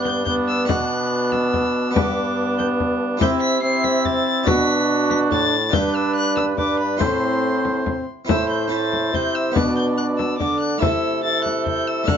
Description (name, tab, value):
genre	classical, renaissance-style consort dance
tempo	142 BPM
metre	3/4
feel	straight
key	A dorian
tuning	A4 = 440 Hz
part	warm violin	melody	0.0-12.2 s	B5 to C7	-25 LUFS	left 4 dB	none
part	warm cor anglais	second line	0.0-12.2 s	D4 to D5	-26 LUFS	right 6 dB	none
part	clear trombone	accompaniment	0.0-12.2 s	B3 to E4	-23 LUFS	equal	none
part	harpsichord	accompaniment	0.0-12.2 s	G2 to D5	-27 LUFS	equal	none
part	warm bassoon	bass	0.0-12.2 s	G2 to D3	-25 LUFS	right 1 dB	none
part	frame drum	percussion	0.1-12.2 s	none	-23 LUFS	left 4 dB	none
room	light reverb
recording	nothing above 7.6 kHz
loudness	-18 LUFS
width	side -8 dB against mid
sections	0.0-8.3 A section; 8.3-12.2 B section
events	none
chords	0.0 G; 0.7 Bm; 2.0 G; 3.2 C; 4.5 Bm; 5.7 G; 7.0 Am; 9.6 Bm; 10.8 Am/C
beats	0.27 | 0.69 1.11 1.53 | 1.95 2.37 2.79 | 3.21 3.63 4.05 | 4.47 4.89 5.31 | 5.73 6.16 6.58 | 7.01 7.44 7.86 | 8.29 8.71 9.14 | 9.56 9.98 10.40 | 10.82 11.24 11.66 | 12.08